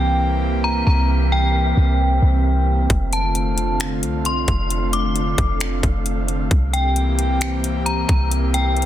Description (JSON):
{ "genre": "hip hop, atmospheric cloud-rap", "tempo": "133 BPM", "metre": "4/4", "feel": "half-time", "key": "F major", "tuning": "A4 = 441 Hz", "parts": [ { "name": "metallic FM bell", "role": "melody", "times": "0.0-8.9 s", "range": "G5 to D6", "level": "-24 LUFS", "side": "left 2 dB", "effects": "chorus, low-pass filter, digital delay" }, { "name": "airy breathy pad", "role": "sustained chords", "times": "0.0-8.9 s", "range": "D3 to G4", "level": "-24 LUFS", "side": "right 1 dB", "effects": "chorus, sidechain pumping" }, { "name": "clean 808-style bass", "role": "bass", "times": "0.0-8.9 s", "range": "F1 to C2", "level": "-19 LUFS", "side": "equal", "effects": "none" }, { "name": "wind-like tuned noise texture", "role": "texture", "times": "0.1-8.9 s", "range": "C4 to F5", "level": "-32 LUFS", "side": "right 2 dB", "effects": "built-in reverb" }, { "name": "trap drum kit", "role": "drums", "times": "2.9-8.9 s", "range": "finger snaps, hi-hat, kick drum", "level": "-22 LUFS", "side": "equal", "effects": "soft clipping on snare" } ], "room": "little or no reverb", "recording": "dense, heavily limited modern master", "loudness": "-17 LUFS", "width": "side -12 dB against mid", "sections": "0.0-8.9 A section", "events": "none", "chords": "0.0 C7; 2.9 F6; 6.5 C7", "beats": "0.19 0.64 | 1.09 1.55 2.00 2.45 | 2.90 3.35 3.80 4.25 | 4.70 5.16 5.61 6.06 | 6.51 6.96 7.41 7.86 | 8.31 8.76" }